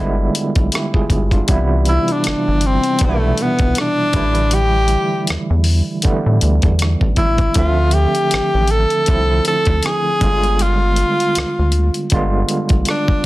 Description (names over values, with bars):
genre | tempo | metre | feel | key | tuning
R&B, neo-soul | 79 BPM | 4/4 | swing 57% on 16ths | unclear | A4 = 442 Hz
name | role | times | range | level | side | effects
overdriven tine electric piano | accompaniment | 0.0-13.3 s | B2 to E5 | -20 LUFS | right 2 dB | fast tremolo, plate reverb
rubbery square bass | bass | 0.0-12.8 s | G1 to A2 | -16 LUFS | equal | none
dusty soul sampler-style drum kit | drums | 0.3-13.2 s | hi-hat, kick drum, rim click | -18 LUFS | equal | soft clipping on snare
breathy tenor saxophone | melody | 1.9-13.3 s | A3 to A4 | -17 LUFS | equal | slapback echo, plate reverb
room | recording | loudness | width
light reverb | dense, heavily limited modern master | -14 LUFS | side -18 dB against mid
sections
0.0-13.3 A section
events
none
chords
0.0 G7b9; 1.5 Cmaj7; 4.1 A7sus4; 7.6 Dm9; 10.2 G7b9